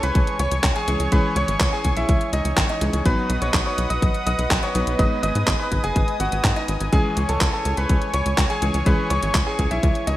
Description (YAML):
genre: italo disco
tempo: 124 BPM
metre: 4/4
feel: straight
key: C# minor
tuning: A4 = 443 Hz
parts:
  - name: bright concert grand piano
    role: melody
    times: 0.0-10.2 s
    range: D#4 to D#6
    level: -26 LUFS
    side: equal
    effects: digital delay
  - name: warm analog pad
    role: sustained chords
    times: 0.0-10.2 s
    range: B4 to D#6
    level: -28 LUFS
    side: equal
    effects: chorus
  - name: clear electric grand piano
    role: stabs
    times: 0.0-10.2 s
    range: E3 to B4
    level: -28 LUFS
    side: left 1 dB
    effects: none
  - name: tight sequencer bass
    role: bass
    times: 0.0-10.2 s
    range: F#1 to G#2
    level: -24 LUFS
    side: equal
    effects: none
  - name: clean 12-bit digital drum machine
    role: drums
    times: 0.0-10.2 s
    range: handclaps, hi-hat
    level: -26 LUFS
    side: equal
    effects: overdrive, studio reverb, gated reverb
  - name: electronic kick drum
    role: drums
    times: 0.2-9.9 s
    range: none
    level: -22 LUFS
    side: equal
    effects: studio reverb
room: light reverb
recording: bright 1980s-style digital production, vinyl crackle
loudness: -18 LUFS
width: side -15 dB against mid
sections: 0.0-10.2 A section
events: none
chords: 0.0 C#m; 3.1 B; 5.0 G#m; 6.9 C#m